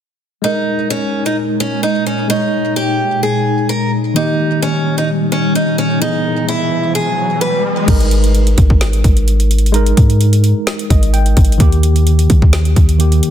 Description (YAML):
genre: hip hop, trap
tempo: 129 BPM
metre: 4/4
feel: half-time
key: G# harmonic minor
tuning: A4 = 440 Hz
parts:
  - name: picked acoustic archtop guitar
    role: melody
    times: 0.4-7.6 s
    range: C#4 to B4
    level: -18 LUFS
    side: right 1 dB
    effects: digital delay
  - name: tine electric piano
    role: accompaniment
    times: 0.4-13.3 s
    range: D#3 to G5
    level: -19 LUFS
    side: right 1 dB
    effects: overdrive, fast stereo tremolo
  - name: glassy FM pad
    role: sustained chords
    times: 0.8-7.9 s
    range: A#2 to D#4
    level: -20 LUFS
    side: left 2 dB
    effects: ensemble chorus, built-in reverb, phaser
  - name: riser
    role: sound effects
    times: 5.9-7.9 s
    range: none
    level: -25 LUFS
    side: left 2 dB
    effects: none
  - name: warm 808-style bass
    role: bass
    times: 7.9-13.2 s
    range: G#1 to D#3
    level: -12 LUFS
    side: equal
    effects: none
  - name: trap drum kit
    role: drums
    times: 7.9-13.3 s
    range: crash cymbal, hi-hat, kick drum, snare drum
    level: -13 LUFS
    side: equal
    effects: none
room: digital ambience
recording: dense, heavily limited modern master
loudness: -11 LUFS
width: side -10 dB against mid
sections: 0.4-7.9 A section; 7.9-13.3 B section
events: riser 5.9-7.9; tine electric piano fill 10.7-11.6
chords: 0.4 G#sus2; 4.2 D#; 6.0 E; 7.9 G#sus2; 11.6 D#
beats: | 0.44 0.90 1.37 1.83 | 2.30 2.76 3.23 3.69 | 4.16 4.62 5.09 5.55 | 6.02 6.48 6.95 7.42 | 7.88 8.35 8.81 9.28 | 9.74 10.21 10.67 11.14 | 11.60 12.07 12.53 13.00